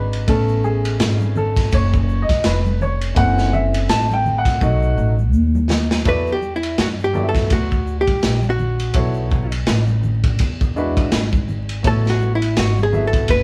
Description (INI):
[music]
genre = hip hop, jazz-hop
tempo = 83 BPM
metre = 4/4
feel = swing 58% on 16ths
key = unclear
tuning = A4 = 440 Hz
[part]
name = warm upright piano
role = accompaniment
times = 0.0-13.4 s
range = E3 to A5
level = -24 LUFS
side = equal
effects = none
[part]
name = upright bass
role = bass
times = 0.0-13.4 s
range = F1 to G2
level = -22 LUFS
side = equal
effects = none
[part]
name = crunchy breakbeat drum kit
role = drums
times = 0.1-13.4 s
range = hi-hat, kick drum, ride cymbal, snare drum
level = -23 LUFS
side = equal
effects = none
[part]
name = tube shaker and congas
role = percussion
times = 0.1-13.4 s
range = none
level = -33 LUFS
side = equal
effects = none
[part]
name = hollow-body jazz guitar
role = melody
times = 6.1-13.4 s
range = E4 to B4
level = -24 LUFS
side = equal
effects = none
[sound]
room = light reverb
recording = band playing live in one room, vinyl crackle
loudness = -18 LUFS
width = mono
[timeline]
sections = 0.0-6.1 A section; 6.1-13.4 A section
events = upright piano solo 0.0-6.1; drum fill 4.6-6.1; hollow-body jazz guitar solo 6.1-13.4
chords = 0.3 Amaj7; 3.2 F#m7b5; 4.6 B7; 6.1 Em7; 9.0 B5; 10.4 E7; 11.8 Amaj7